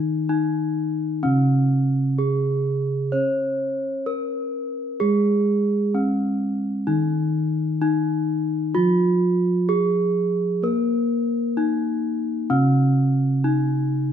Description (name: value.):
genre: gamelan.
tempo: 64 BPM.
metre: 4/4.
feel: straight.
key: Eb slendro.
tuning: A4 = 440 Hz.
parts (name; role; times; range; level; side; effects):
gamelan-type bronze metallophone; melody; 0.0-14.1 s; Db4-40c to Db5-40c; -22 LUFS; equal; none.
gamelan-type bronze metallophone; accompaniment; 0.0-14.1 s; Db3-40c to Db4-40c; -22 LUFS; right 1 dB; none.
room: moderate scoring stage reverb, RT60 1.5 s.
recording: close, detailed microphones.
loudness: -19 LUFS.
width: side -9 dB against mid.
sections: 0.0-6.9 A section; 6.9-14.1 A section.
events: none.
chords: none.